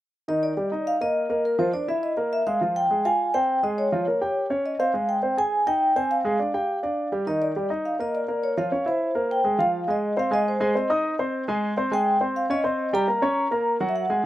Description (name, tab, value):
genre	jazz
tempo	206 BPM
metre	4/4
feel	straight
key	F minor from 9.6 s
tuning	A4 = 440 Hz
part	vibraphone with soft mallets	melody	0.3-14.3 s	Bb4 to Bb5	-24 LUFS	equal	slapback echo
part	warm upright piano	accompaniment	0.3-14.3 s	Eb3 to Eb6	-25 LUFS	right 1 dB	none
room	little or no reverb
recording	recorded outdoors, with no room sound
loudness	-22 LUFS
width	side -14 dB against mid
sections	0.3-9.6 A section; 9.6-14.3 B section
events	none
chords	0.3 Ebmaj7; 1.4 C9; 2.0 Emaj7#11; 2.6 Fmadd9; 3.8 Bbm7; 4.4 Eb13; 4.9 Abmaj7; 6.1 Dm7b5; 6.7 G5; 7.3 Ebmaj7; 8.4 Bbmadd9/F; 9.0 C7b13; 9.6 Fm7; 10.8 Ab; 11.9 Dbsus2; 13.1 Bbm; 13.7 Gbadd9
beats	| 0.28 0.57 0.86 1.15 | 1.44 1.73 2.03 2.32 | 2.61 2.90 3.19 3.48 | 3.77 4.07 4.36 4.65 | 4.94 5.23 5.52 5.81 | 6.10 6.39 6.68 6.98 | 7.27 7.56 7.85 8.14 | 8.43 8.72 9.01 9.30 | 9.59 9.88 10.17 10.46 | 10.76 11.04 11.34 11.63 | 11.92 12.21 12.50 12.79 | 13.08 13.37 13.66 13.95 | 14.24